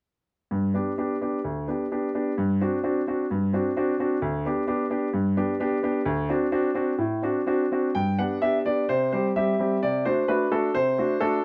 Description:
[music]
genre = classical-period piano sonatina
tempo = 129 BPM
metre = 4/4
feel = rubato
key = G major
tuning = A4 = 440 Hz
[part]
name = bright baby grand piano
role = solo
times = 0.5-11.4 s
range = D2 to G5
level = -25 LUFS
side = equal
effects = none
[sound]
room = moderate small room reverb, RT60 0.5 s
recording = none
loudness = -25 LUFS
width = mono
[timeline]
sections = 0.5-8.0 A section; 8.0-11.4 B section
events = none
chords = 0.5 G; 2.4 D7/G; 4.2 G/D; 6.1 D7; 8.0 G; 8.9 C; 9.8 D7/C

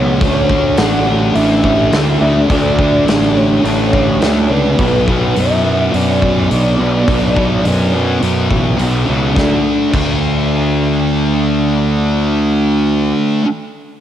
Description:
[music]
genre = rock, shoegaze and dream pop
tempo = 105 BPM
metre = 4/4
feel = straight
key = D major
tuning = A4 = 437 Hz
[part]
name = warm velvety synth lead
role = melody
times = 0.0-8.8 s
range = B4 to F#5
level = -18 LUFS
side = equal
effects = chorus, tremolo, cassette tape, tape echo
[part]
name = thick fuzz guitar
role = riff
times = 0.0-13.5 s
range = B2 to D4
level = -14 LUFS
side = equal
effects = distortion, wide subtle chorus, cassette tape
[part]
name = fuzz fingered electric bass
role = bass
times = 0.0-13.1 s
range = A1 to F#2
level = -17 LUFS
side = equal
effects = overdrive
[part]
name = big rock drum kit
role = drums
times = 0.2-10.1 s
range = crash cymbal, hi-hat, kick drum, snare drum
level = -19 LUFS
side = equal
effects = cassette tape
[sound]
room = light reverb, studio reverb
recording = home recording on cassette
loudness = -11 LUFS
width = side -10 dB against mid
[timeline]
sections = 0.0-9.4 A section; 9.4-11.7 B section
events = none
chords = 0.2 Dmaj7; 4.8 Bm; 9.4 D5

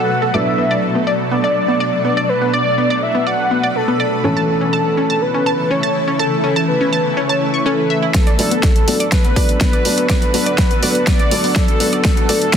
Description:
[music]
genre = progressive house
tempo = 123 BPM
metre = 4/4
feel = straight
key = D major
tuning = A4 = 440 Hz
[part]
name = wide unison lead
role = melody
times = 0.0-12.6 s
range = A4 to F#5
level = -19 LUFS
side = equal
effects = ping-pong delay
[part]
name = shimmering ambient pad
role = sustained chords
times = 0.0-12.6 s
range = B2 to B4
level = -22 LUFS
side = equal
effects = chorus, built-in reverb, sidechain pumping
[part]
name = analog pluck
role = arpeggios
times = 0.0-12.6 s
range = B3 to C#6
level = -20 LUFS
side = equal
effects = chorus, sidechain pumping, dub echo
[part]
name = felt-muted upright piano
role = stabs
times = 0.0-12.4 s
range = E3 to D5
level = -23 LUFS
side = right 1 dB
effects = sidechain pumping, low-pass filter
[part]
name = soft supersaw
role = second line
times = 8.1-12.6 s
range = A4 to D5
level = -25 LUFS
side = right 1 dB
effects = sidechain pumping, dub echo
[part]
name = big-room dance drum kit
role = drums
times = 8.1-12.6 s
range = hi-hat, snare drum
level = -19 LUFS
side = equal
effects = overdrive
[part]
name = electronic kick drum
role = drums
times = 8.1-12.6 s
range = none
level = -15 LUFS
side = equal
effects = overdrive
[part]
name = dark detuned saw bass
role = bass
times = 8.4-12.5 s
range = none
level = barely audible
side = none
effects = none
[sound]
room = moderate lush hall reverb, RT60 2.1 s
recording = dense, heavily limited modern master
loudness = -13 LUFS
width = side -8 dB against mid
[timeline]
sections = 0.0-8.1 A section; 8.1-12.6 B section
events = filter sweep on synth pluck 0.0-8.1; build-up 8.1-12.6; drum fill 8.1-12.6; filter sweep on felt piano 8.1-12.6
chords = 0.0 Bm7; 4.2 A; 8.1 D6

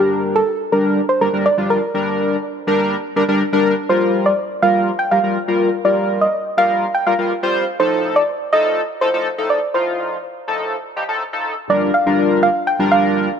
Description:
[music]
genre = pop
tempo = 123 BPM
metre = 4/4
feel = straight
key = Bb major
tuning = A4 = 440 Hz
[part]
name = soft round pluck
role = melody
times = 0.0-13.4 s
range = G4 to G5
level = -17 LUFS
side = right 1 dB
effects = chorus, ping-pong delay
[part]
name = chorused polysynth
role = accompaniment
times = 0.0-13.3 s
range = A2 to C5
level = -18 LUFS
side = left 1 dB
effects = none
[sound]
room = moderate lush hall reverb, RT60 2.9 s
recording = high-pass filter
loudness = -15 LUFS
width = side -7 dB against mid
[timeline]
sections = 0.0-11.7 A section; 11.7-13.4 B section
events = build-up 0.0-11.7; filter sweep 0.0-11.7; drop 11.7-13.4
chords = 0.0 Bb6; 3.9 Gm7; 7.8 F7/A; 11.7 Bb6

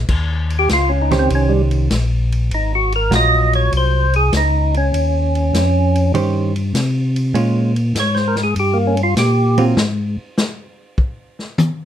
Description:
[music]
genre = soul jazz organ trio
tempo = 99 BPM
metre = 4/4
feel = swing 68% on 8ths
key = Eb mixolydian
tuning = A4 = 440 Hz
[part]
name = mellow tonewheel organ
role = bass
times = 0.0-10.2 s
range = Ab1 to C3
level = -16 LUFS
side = left 1 dB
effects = overdrive, chorus vibrato, slow rotary speaker
[part]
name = vintage drum kit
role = drums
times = 0.1-11.8 s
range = crash cymbal, hi-hat, kick drum, ride cymbal, snare drum, toms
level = -23 LUFS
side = left 1 dB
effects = none
[part]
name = percussive tonewheel organ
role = melody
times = 0.6-9.7 s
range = G3 to Eb5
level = -17 LUFS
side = right 1 dB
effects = slow rotary speaker, overdrive
[part]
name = hollow-body jazz guitar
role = accompaniment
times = 1.1-9.8 s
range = Eb3 to C5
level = -19 LUFS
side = right 5 dB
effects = none
[sound]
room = light reverb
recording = minimal, uncompressed stereo recording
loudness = -14 LUFS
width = side -10 dB against mid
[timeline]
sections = 0.1-11.8 A section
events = tonewheel organ solo 0.1-11.8; drum solo 9.8-11.8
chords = 0.1 Eb6; 2.5 Ab13; 4.9 Eb13; 7.4 Bbm7; 8.6 Gm7b5; 9.8 N.C.

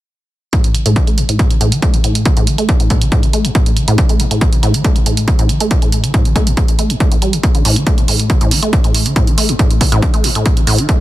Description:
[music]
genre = driving peak-time techno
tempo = 139 BPM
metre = 4/4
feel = straight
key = unclear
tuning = A4 = 436 Hz
[part]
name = acid bass, saw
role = riff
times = 0.5-11.0 s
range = A2 to A3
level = -16 LUFS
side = equal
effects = analog chorus, sidechain pumping, ping-pong delay
[part]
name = electronic hi-hat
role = drums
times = 0.5-11.0 s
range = none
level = -20 LUFS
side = right 4 dB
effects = sidechain pumping on hats
[part]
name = electronic kick drum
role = drums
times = 0.5-11.0 s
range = none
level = -13 LUFS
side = equal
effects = none
[sound]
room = digital ambience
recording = dense, heavily limited modern master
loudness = -11 LUFS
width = side -16 dB against mid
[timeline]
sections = 0.5-11.0 A section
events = filter sweep on acid bass 0.5-11.0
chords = none

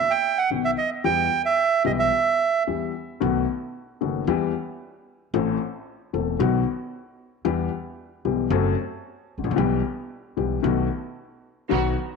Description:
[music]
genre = tango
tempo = 113 BPM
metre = 4/4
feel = rubato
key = E harmonic minor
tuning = A4 = 444 Hz
[part]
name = bandoneon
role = melody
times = 0.0-2.6 s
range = D#5 to G5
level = -20 LUFS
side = right 6 dB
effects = none
[part]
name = warm grand piano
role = accompaniment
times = 0.5-11.9 s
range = E1 to A4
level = -25 LUFS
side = left 10 dB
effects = none
[part]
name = upright bass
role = bass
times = 0.5-11.9 s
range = E1 to E2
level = -28 LUFS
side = right 4 dB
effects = none
[part]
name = warm chamber string section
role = stabs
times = 11.7-11.9 s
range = B3 to F#4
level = -29 LUFS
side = right 12 dB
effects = none
[sound]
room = wet spring reverb, RT60 1.7 s, studio reverb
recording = 1960s-style stereo with parts hard left and right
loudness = -21 LUFS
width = side -4 dB against mid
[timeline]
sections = 0.0-3.2 A section; 3.2-12.2 B section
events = none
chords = 0.0 B; 1.0 Em; 3.2 B7; 4.3 Em; 5.3 Am; 6.4 B; 7.5 Em; 8.5 F#dim; 9.6 Em/B; 10.6 B7

